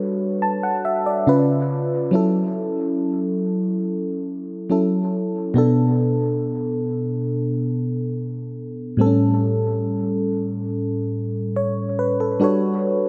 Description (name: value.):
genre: R&B.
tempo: 70 BPM.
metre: 4/4.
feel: straight.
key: B minor.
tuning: A4 = 442 Hz.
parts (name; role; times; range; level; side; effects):
mellow FM electric piano; solo; 0.0-13.1 s; A2 to A5; -22 LUFS; equal; chorus, dub echo.
room: light reverb, digital ambience.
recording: echo-heavy mix.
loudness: -22 LUFS.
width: mono.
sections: 0.0-12.4 A section.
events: none.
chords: 0.0 Gmaj9#11; 1.3 C#7; 2.1 F#m7; 5.6 Bm7; 9.0 A7; 12.4 Gmaj9#11.